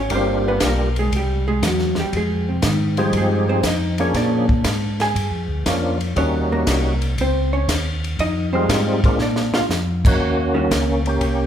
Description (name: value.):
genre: soul jazz organ trio.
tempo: 119 BPM.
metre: 4/4.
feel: swing 69% on 8ths.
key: Eb mixolydian.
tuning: A4 = 440 Hz.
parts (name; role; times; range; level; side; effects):
vintage hollow-body jazz guitar; accompaniment; 0.0-10.7 s; C3 to Ab5; -23 LUFS; right 1 dB; none.
mellow tonewheel organ; bass; 0.0-11.5 s; G1 to Bb2; -22 LUFS; equal; slow rotary speaker.
percussive tonewheel organ; melody; 0.1-11.5 s; F3 to Ab4; -22 LUFS; equal; slow rotary speaker, overdrive, chorus vibrato.
compact cocktail drum kit; drums; 0.1-11.4 s; crash cymbal, hi-hat, kick drum, ride cymbal, snare drum; -23 LUFS; equal; none.
room: moderate recital hall reverb, RT60 1.5 s.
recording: recorded in a church or concert hall.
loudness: -17 LUFS.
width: side -9 dB against mid.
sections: 0.0-10.2 A section; 10.2-11.5 B section.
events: hollow-body jazz guitar solo 0.0-10.2; drum fill 9.2-9.7.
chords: 0.1 Gm7; 1.1 C; 2.1 Fm7; 4.1 Bb7#9; 6.2 Eb7#9; 8.2 Fm7; 9.2 Bb; 10.2 Eb7#9.